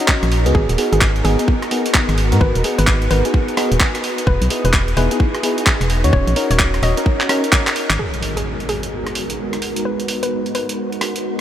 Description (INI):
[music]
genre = UK garage, two-step garage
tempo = 129 BPM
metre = 4/4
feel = swing 62% on 16ths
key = G# minor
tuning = A4 = 440 Hz
[part]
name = soft string machine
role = sustained chords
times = 0.0-11.4 s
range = G#2 to A#4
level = -26 LUFS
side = equal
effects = phaser, ensemble chorus, sidechain pumping
[part]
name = FM electric piano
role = stabs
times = 0.0-7.4 s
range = B3 to D#5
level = -22 LUFS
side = left 1 dB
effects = chorus, phaser, analog delay
[part]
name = breakbeat sampler-style drum kit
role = drums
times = 0.1-11.2 s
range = handclaps, hi-hat, rim click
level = -21 LUFS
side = equal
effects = small room ambience
[part]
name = electronic kick drum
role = drums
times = 0.1-7.6 s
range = none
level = -17 LUFS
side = equal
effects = small room ambience
[part]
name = organ-like FM bass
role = bass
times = 0.2-8.0 s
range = D#1 to G#2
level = -17 LUFS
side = equal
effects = tube saturation, sidechain pumping
[part]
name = hollow square pluck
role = melody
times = 0.5-10.8 s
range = G#4 to D#5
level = -26 LUFS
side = left 1 dB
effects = chorus, analog delay
[part]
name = impact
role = sound effects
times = 8.0-9.9 s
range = none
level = -30 LUFS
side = equal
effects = none
[sound]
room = moderate huge ambient reverb, RT60 7.3 s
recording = dreamy mix soaked in reverb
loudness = -15 LUFS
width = side -11 dB against mid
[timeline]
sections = 0.0-8.0 A section; 8.0-11.4 B section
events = drum fill 7.6-8.0; impact 8.0-9.9; filter sweep on string machine 8.0-11.4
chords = 0.0 D#m7; 0.5 G#m7; 4.0 Emaj7; 5.9 D#m7; 8.0 G#m7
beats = 0.08 | 0.55 1.01 1.48 1.95 | 2.41 2.88 3.34 3.81 | 4.27 4.74 5.20 5.67 | 6.13 6.60 7.06 7.53 | 7.99 8.46 8.92 9.39 | 9.85 10.32 10.78 11.25